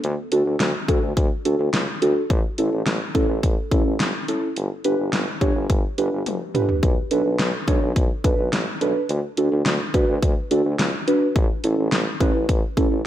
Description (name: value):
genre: synth-pop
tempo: 106 BPM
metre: 4/4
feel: straight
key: D major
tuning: A4 = 439 Hz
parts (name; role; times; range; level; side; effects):
- clear tuba; bass; 0.0-13.0 s; F#1 to D2; -25 LUFS; left 1 dB; none
- pop drum kit; drums; 0.0-12.9 s; hi-hat, kick drum, snare drum, toms; -22 LUFS; equal; gated reverb
- muted felt-like synth keys; accompaniment; 0.3-13.0 s; C#4 to C#5; -23 LUFS; right 1 dB; chorus
room: light reverb, digital ambience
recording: none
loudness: -19 LUFS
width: side -12 dB against mid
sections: 0.0-13.1 A section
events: drum fill 6.3-6.8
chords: 0.0 D; 2.3 A; 4.6 G; 6.8 Bm7; 9.1 D; 11.4 A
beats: | 0.04 0.60 1.17 1.74 | 2.30 2.87 3.43 4.00 | 4.57 5.13 5.70 6.26 | 6.83 7.39 7.96 8.53 | 9.09 9.66 10.22 10.79 | 11.36 11.92 12.49